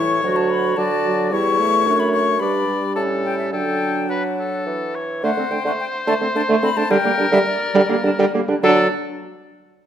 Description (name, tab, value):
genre	quick classical-period movement for wind quintet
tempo	100-111 BPM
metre	3/4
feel	straight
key	D major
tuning	A4 = 440 Hz
part	concert flute	melody	0.0-9.0 s	D5 to C#6	-23 LUFS	left 7 dB	none
part	clear oboe	second line	0.0-8.9 s	A4 to D5	-24 LUFS	left 2 dB	none
part	mellow clarinet	accompaniment	0.0-8.9 s	G3 to F#4	-24 LUFS	right 6 dB	none
part	warm French horn	accompaniment	0.0-8.9 s	E3 to A3	-23 LUFS	equal	none
part	mellow bassoon	bass	0.0-8.9 s	D2 to F#3	-22 LUFS	right 2 dB	none
room	moderate recital hall reverb, RT60 1.5 s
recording	none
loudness	-16 LUFS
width	side -9 dB against mid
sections	0.0-5.2 A section; 5.2-8.6 B section; 8.6-9.9 C section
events	slowing down 4.4-8.6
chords	0.2 D; 1.3 C#dim/E; 1.9 D/F#; 2.4 G; 3.0 A7; 3.5 D; 5.2 D5; 6.9 Gm/D; 8.6 D